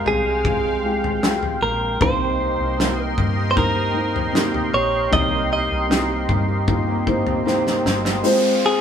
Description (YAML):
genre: pop ballad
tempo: 77 BPM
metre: 4/4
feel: straight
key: unclear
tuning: A4 = 439 Hz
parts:
  - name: direct-recorded clean electric guitar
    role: melody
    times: 0.0-8.8 s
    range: Ab4 to Eb5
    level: -22 LUFS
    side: right 1 dB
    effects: none
  - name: felt-muted upright piano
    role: accompaniment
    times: 0.0-8.8 s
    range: C3 to G5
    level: -23 LUFS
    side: left 1 dB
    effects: none
  - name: sweeping resonant pad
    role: sustained chords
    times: 0.0-8.8 s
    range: Ab3 to C6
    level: -27 LUFS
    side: right 1 dB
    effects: chorus
  - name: fingerpicked plugged-in steel-string acoustic guitar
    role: arpeggios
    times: 0.0-8.2 s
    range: F2 to G4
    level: -31 LUFS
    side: right 2 dB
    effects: none
  - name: woody fretless electric bass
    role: bass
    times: 0.0-8.2 s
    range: G1 to G2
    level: -26 LUFS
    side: equal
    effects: none
  - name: loose indie drum kit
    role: drums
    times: 0.1-8.2 s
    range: kick drum, snare drum, toms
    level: -24 LUFS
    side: left 1 dB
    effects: none
  - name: swell and downlifter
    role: sound effects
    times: 7.4-8.8 s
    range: none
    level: -30 LUFS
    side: equal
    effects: none
room: moderate stone room reverb, RT60 1.3 s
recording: band playing live in one room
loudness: -17 LUFS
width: side -8 dB against mid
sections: 0.0-8.2 A section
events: drum fill 7.5-8.2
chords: 0.0 Fmadd9; 2.0 Cm7; 8.2 Fm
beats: 0.45 1.23 | 2.01 2.79 3.57 4.35 | 5.13 5.91 6.68 7.46 | 8.24